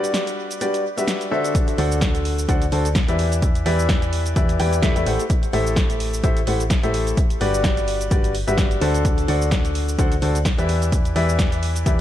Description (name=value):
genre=piano house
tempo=128 BPM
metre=4/4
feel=swing 55% on 16ths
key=unclear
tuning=A4 = 439 Hz
part: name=clear baby grand piano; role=riff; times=0.0-12.0 s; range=D3 to A5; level=-22 LUFS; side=left 1 dB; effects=sidechain pumping, tape echo
part: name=punchy analog drum machine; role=drums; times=0.0-12.0 s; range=hi-hat, shaker, snare drum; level=-28 LUFS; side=equal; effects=none
part: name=electronic kick drum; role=drums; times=1.5-12.0 s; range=none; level=-20 LUFS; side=equal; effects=none
part: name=solid FM bass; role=bass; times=1.8-12.0 s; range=G1 to E2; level=-23 LUFS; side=equal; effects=sidechain pumping
room=little or no reverb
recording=echo-heavy mix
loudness=-18 LUFS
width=side -12 dB against mid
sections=0.0-1.5 A section; 1.5-12.0 B section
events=drop 1.5-12.0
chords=0.0 D7; 3.2 Em7; 5.1 Am7; 7.2 Gmaj7; 9.0 D7; 10.7 Em7